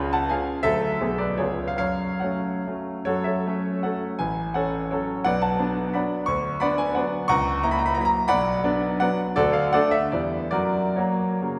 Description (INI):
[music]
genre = classical, romantic triple-time dance for piano with dotted rhythms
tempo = 129-189 BPM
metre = 3/4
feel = rubato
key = F# minor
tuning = A4 = 440 Hz
[part]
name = bright concert grand piano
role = solo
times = 0.0-11.6 s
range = A1 to C#6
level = -24 LUFS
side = equal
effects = none
[sound]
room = wet church reverb, RT60 2.7 s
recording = recorded in a church or concert hall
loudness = -24 LUFS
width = mono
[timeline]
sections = 0.0-3.1 A section; 3.1-11.6 B section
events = none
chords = 0.0 C#7; 0.6 D; 1.0 G#dim/B; 1.4 C#7; 1.8 F#m; 4.2 F#m/A; 5.3 Bm; 6.3 Bm/D; 7.3 F#7/C#; 8.3 Bm; 9.4 D; 10.1 Em; 10.5 F#